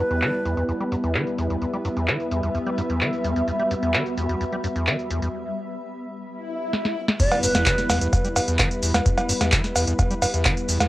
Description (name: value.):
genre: acid house.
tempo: 129 BPM.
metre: 4/4.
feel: straight.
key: E minor.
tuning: A4 = 440 Hz.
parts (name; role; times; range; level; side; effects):
mellow hollow jazz flute; melody; 0.0-0.6, 7.2-8.1 s; B4 to D5; -26 LUFS; right 1 dB; cassette tape, analog delay.
warm analog pad; sustained chords; 0.0-10.9 s; G3 to B4; -28 LUFS; equal; chorus, sidechain pumping, cassette tape.
acid bass, square; riff; 0.0-10.9 s; E2 to G3; -26 LUFS; equal; overdrive, cassette tape.
granular cloud pad; texture; 0.9-5.3 s; G3 to B5; -29 LUFS; equal; built-in reverb, sidechain pumping, cassette tape.
booming analog drum machine; drums; 0.1-10.9 s; cabasa, cowbell, crash cymbal, handclaps, hi-hat, snare drum; -23 LUFS; equal; low-pass filter on hats, low-pass filter on perc, low-pass filter on snare, low-pass filter on cymbals.
swell and impact; sound effects; 6.4-9.1 s; none; -32 LUFS; left 1 dB; none.
electronic kick drum; drums; 7.2-10.5 s; none; -23 LUFS; equal; none.
room: wet studio reverb, RT60 0.5 s.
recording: home recording on cassette.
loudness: -20 LUFS.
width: side -16 dB against mid.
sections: 0.0-7.2 A section; 7.2-10.9 B section.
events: break 5.3-7.2; swell 6.4-7.2; drum fill 6.7-7.2; drop 7.2-10.9; impact 7.2-9.1.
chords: 0.0 Em.